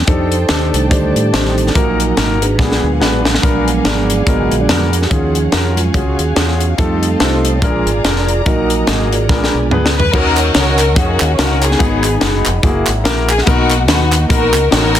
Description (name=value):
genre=uptempo gospel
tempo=143 BPM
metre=4/4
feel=swing 57% on 8ths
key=Eb minor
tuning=A4 = 440 Hz
part: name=dark studio string section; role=sustained chords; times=0.0-10.1 s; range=Cb4 to Bb5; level=-27 LUFS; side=left 1 dB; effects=none
part: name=mellow tonewheel organ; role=sustained chords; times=0.0-15.0 s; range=D3 to Db6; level=-19 LUFS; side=right 3 dB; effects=slow rotary speaker, chorus vibrato
part: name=clear grand piano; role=accompaniment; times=0.1-15.0 s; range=Ab2 to Db5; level=-19 LUFS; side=left 4 dB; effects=none
part: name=fingered electric bass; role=bass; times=0.1-15.0 s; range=F1 to A2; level=-17 LUFS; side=equal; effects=none
part: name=tight funk drum kit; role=drums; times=0.1-15.0 s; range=crash cymbal, hi-hat, kick drum, snare drum, toms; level=-16 LUFS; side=equal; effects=none
part: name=warm studio string section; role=melody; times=10.0-15.0 s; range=Bb3 to Cb5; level=-16 LUFS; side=left 2 dB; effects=none
part: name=group handclap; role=percussion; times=10.4-15.0 s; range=none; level=-20 LUFS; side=right 4 dB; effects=none
room=light reverb, studio reverb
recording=dense, heavily limited modern master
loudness=-11 LUFS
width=side -11 dB against mid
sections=0.0-10.1 A section; 10.1-15.0 B section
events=tonewheel organ solo 0.0-10.1; drum fill 2.6-3.4, 9.3-10.1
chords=0.1 F13; 1.8 Ebm/Bb; 2.6 Bb7b9b13; 5.1 Ebm11; 6.8 F9; 7.6 Bb7; 8.5 Ebm/Bb; 9.3 Bb7b9; 10.1 Ebm7; 11.8 Abm7; 12.6 Gb9; 13.5 Bmaj7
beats=| 0.07 0.49 0.91 1.33 | 1.75 2.17 2.59 3.01 | 3.43 3.85 4.27 4.69 | 5.11 5.53 5.95 6.37 | 6.78 7.20 7.62 8.04 | 8.46 8.88 9.30 9.72 | 10.13 10.55 10.97 11.39 | 11.80 12.22 12.64 13.05 | 13.47 13.89 14.30 14.72